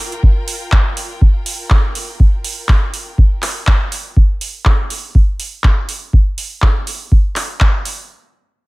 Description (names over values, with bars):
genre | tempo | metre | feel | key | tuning
acid house | 122 BPM | 4/4 | swing 56% on 16ths | G minor | A4 = 440 Hz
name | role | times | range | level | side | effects
clear studio string section | texture | 0.0-4.2 s | F4 to G5 | -33 LUFS | left 2 dB | sidechain pumping
electro analog drum machine | drums | 0.1-8.0 s | handclaps, hi-hat | -21 LUFS | right 1 dB | none
electronic kick drum | drums | 0.2-7.7 s | none | -11 LUFS | equal | none
room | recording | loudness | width
little or no reverb | none | -13 LUFS | side -23 dB against mid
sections
0.0-8.1 A section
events
fade-out on string section 0.0-4.2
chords
0.0 Gm7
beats
| 0.23 0.72 1.22 1.71 | 2.20 2.69 3.18 3.67 | 4.17 4.66 5.15 5.64 | 6.13 6.62 7.12 7.61